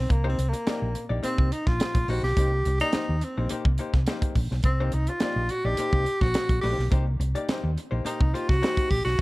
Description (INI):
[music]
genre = funk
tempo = 106 BPM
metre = 4/4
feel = straight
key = C minor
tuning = A4 = 440 Hz
[part]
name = breathy tenor saxophone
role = melody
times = 0.0-9.2 s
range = Bb3 to G4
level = -28 LUFS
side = equal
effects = none
[part]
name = hollow-body short-scale fingered electric bass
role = bass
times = 0.0-9.2 s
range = Bb1 to Eb2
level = -26 LUFS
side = equal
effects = none
[part]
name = vintage hollow-body jazz guitar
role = accompaniment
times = 0.1-9.2 s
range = Bb3 to D5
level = -34 LUFS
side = left 3 dB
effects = none
[part]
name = tight funk drum kit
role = drums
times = 0.1-9.2 s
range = hi-hat, kick drum, snare drum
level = -26 LUFS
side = equal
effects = none
[sound]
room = studio reverb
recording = dark, warm production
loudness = -23 LUFS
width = side -20 dB against mid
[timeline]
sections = 0.0-9.2 A section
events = tenor saxophone solo 0.0-9.2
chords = 0.0 Cm7